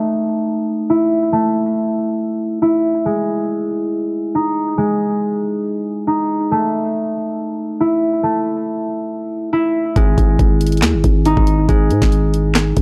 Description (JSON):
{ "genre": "hip hop, trap", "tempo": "139 BPM", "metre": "4/4", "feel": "half-time", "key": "unclear", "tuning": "A4 = 440 Hz", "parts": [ { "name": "concert harp", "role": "arpeggios", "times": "0.0-12.8 s", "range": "G#3 to E4", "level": "-19 LUFS", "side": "equal", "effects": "low-pass filter, analog delay" }, { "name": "growling 808-style bass", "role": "bass", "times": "10.0-12.8 s", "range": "G#1 to G#2", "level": "-18 LUFS", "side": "equal", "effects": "none" }, { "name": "trap drum kit", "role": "drums", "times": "10.0-12.8 s", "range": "handclaps, hi-hat, kick drum, snare drum", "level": "-18 LUFS", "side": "equal", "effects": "none" } ], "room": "digital ambience", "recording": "dry, gritty hardware recording", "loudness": "-17 LUFS", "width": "mono", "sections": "0.0-12.8 A section", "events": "filter sweep on harp 0.0-10.0", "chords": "0.0 A5; 3.1 G#5; 6.5 A5; 10.0 G#5" }